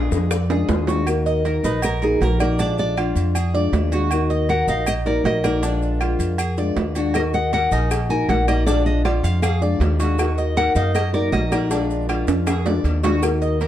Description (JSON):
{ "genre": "latin, Cuban son and guajira", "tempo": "158 BPM", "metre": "4/4", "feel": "straight", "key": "Eb harmonic minor", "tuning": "A4 = 440 Hz", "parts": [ { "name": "fingerpicked old ladder-braced acoustic guitar", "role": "accompaniment", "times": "0.0-13.7 s", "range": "Eb3 to Gb4", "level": "-24 LUFS", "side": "left 4 dB", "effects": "none" }, { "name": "Cuban tres", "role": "arpeggios", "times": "0.0-13.7 s", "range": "D4 to Eb5", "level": "-27 LUFS", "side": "right 4 dB", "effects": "none" }, { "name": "upright bass", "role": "bass", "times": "0.0-13.7 s", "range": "Bb1 to Gb2", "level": "-21 LUFS", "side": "equal", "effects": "none" }, { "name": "bongos and cowbell", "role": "percussion", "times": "0.1-1.0, 7.1-13.7 s", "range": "none", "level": "-30 LUFS", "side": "left 4 dB", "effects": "none" }, { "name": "maracas", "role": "percussion", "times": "0.1-13.7 s", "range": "none", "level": "-39 LUFS", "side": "left 7 dB", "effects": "none" }, { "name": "claves", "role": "percussion", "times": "0.3-13.4 s", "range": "none", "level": "-36 LUFS", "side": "left 6 dB", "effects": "none" }, { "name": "timbales and agogo bells", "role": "percussion", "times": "0.3-13.7 s", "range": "none", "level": "-27 LUFS", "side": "right 4 dB", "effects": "none" }, { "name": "nylon-string guitar", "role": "melody", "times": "1.6-13.0 s", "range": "Ab4 to Ab5", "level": "-24 LUFS", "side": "equal", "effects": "none" } ], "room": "light reverb", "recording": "dark, warm production", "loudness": "-17 LUFS", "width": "side -11 dB against mid", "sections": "0.0-1.1 A section; 1.1-13.2 B section", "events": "drum fill 0.0-1.1, 12.3-13.2", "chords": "0.0 Bb7 (rootless); 1.1 Ebm; 2.6 Bb7; 4.1 Ebm; 5.6 Bb7; 7.2 Ebm; 8.7 Bb7; 10.2 Ebm; 11.7 Bb7", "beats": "0.31 0.69 | 1.07 1.45 1.83 2.21 | 2.59 2.97 3.35 3.73 | 4.11 4.49 4.87 5.25 | 5.63 6.01 6.39 6.77 | 7.15 7.53 7.91 8.29 | 8.67 9.05 9.43 9.81 | 10.19 10.57 10.95 11.33 | 11.71 12.09 12.47 12.85 | 13.23 13.61" }